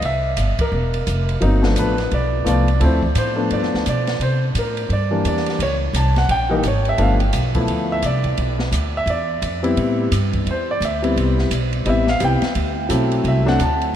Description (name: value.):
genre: jazz piano trio.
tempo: 172 BPM.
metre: 4/4.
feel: swing 62% on 8ths.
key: G mixolydian.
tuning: A4 = 440 Hz.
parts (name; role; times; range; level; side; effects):
warm concert grand piano; melody; 0.0-13.9 s; E3 to A5; -20 LUFS; left 1 dB; none.
upright bass; bass; 0.0-14.0 s; E1 to C3; -20 LUFS; equal; none.
open jazz drum kit; drums; 0.0-13.9 s; hi-hat, kick drum, ride cymbal, snare drum; -28 LUFS; right 1 dB; none.
room: moderate cathedral reverb, RT60 5.7 s.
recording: in a vast, echoing space.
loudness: -16 LUFS.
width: side -10 dB against mid.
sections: 0.0-14.0 A section.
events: band accent 0.5.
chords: 0.0 C7; 1.4 G7; 2.8 Dm7; 3.5 G7; 4.2 C7; 5.6 C#dim7(no3); 7.0 G7; 8.4 Bm; 9.1 E5; 9.8 Am7; 12.6 D7.